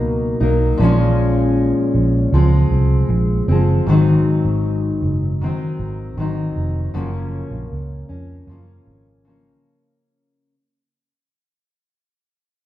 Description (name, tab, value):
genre	indie pop, bedroom pop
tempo	78 BPM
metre	4/4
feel	straight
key	unclear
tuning	A4 = 440 Hz
part	fingerpicked steel-string acoustic guitar	accompaniment	0.0-10.5 s	Gb2 to Eb4	-18 LUFS	left 2 dB	warbly pitch drift
part	vintage muted fingered electric bass	bass	0.0-9.5 s	F1 to Gb2	-18 LUFS	right 1 dB	none
room	wet large studio reverb, RT60 1.4 s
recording	band playing live in one room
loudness	-15 LUFS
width	side -14 dB against mid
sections	0.0-3.9 A section; 3.9-10.0 B section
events	fade-out 3.9-10.0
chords	0.0 Cbmaj7; 0.8 Bbm7; 2.3 Dbmaj7; 3.9 Ab7; 6.9 Gbmaj7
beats	0.03 | 0.80 1.56 2.33 3.10 | 3.87 4.63 5.40 6.17 | 6.94 7.71 8.48 9.26